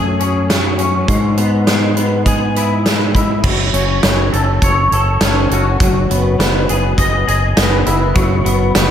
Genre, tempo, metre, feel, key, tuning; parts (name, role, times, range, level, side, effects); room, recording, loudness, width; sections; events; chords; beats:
post-rock; 102 BPM; 4/4; straight; A4 = 440 Hz
twangy electric guitar; arpeggios; 0.0-8.9 s; F#3 to D#5; -16 LUFS; left 2 dB; ensemble chorus, tape echo
growling fingered electric bass; bass; 0.0-8.9 s; F#1 to G#2; -17 LUFS; equal; overdrive
huge arena drum kit; drums; 0.2-8.9 s; crash cymbal, hi-hat, kick drum, snare drum; -17 LUFS; right 1 dB
moderate plate reverb, RT60 2.3 s; dreamy mix soaked in reverb; -12 LUFS; side -9 dB against mid
0.0-3.4 A section; 3.4-8.9 B section
0.0 F#madd9; 1.1 E/G#; 3.4 F#m; 5.8 Emaj7/F#; 8.2 N.C.
0.49 | 1.08 1.68 2.27 2.86 | 3.45 4.04 4.63 5.22 | 5.81 6.40 6.99 7.58 | 8.17 8.76